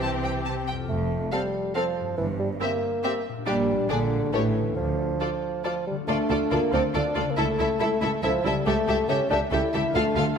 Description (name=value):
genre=cinematic, playful, whimsical film cue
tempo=139 BPM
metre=3/4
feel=straight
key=D minor from 3.5 s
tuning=A4 = 440 Hz
part: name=warm studio violin section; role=melody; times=0.0-10.2 s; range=C#5 to A5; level=-33 LUFS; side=left 4 dB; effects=none
part: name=dark studio violin section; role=second line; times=0.0-10.3 s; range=G4 to A4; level=-33 LUFS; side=left 4 dB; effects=none
part: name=dark bassoon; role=accompaniment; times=0.0-10.4 s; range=D3 to E4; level=-27 LUFS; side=right 1 dB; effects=none
part: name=rich studio viola section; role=accompaniment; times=0.0-10.2 s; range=C4 to G4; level=-33 LUFS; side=right 1 dB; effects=none
part: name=concert harp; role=arpeggios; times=0.0-10.4 s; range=F2 to A4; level=-32 LUFS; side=left 5 dB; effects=none
part: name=dark studio double bass section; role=bass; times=0.0-10.2 s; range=F1 to D2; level=-33 LUFS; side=right 4 dB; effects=none
part: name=warm studio cello section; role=bass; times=0.0-10.2 s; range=C#2 to C3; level=-31 LUFS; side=right 2 dB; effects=none
part: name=dark French horn section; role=sustained chords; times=6.5-9.7 s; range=E4 to A4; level=-35 LUFS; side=left 4 dB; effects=none
room=moderate scoring stage reverb, RT60 1.8 s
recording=none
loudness=-23 LUFS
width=side -6 dB against mid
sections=0.0-6.1 A section; 6.1-10.4 B section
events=none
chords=0.0 C; 0.9 F; 2.2 C7/G; 3.5 Gm/Bb; 3.9 Bb7; 4.3 A7; 4.8 Dm; 7.4 A/C#; 8.7 A7/C#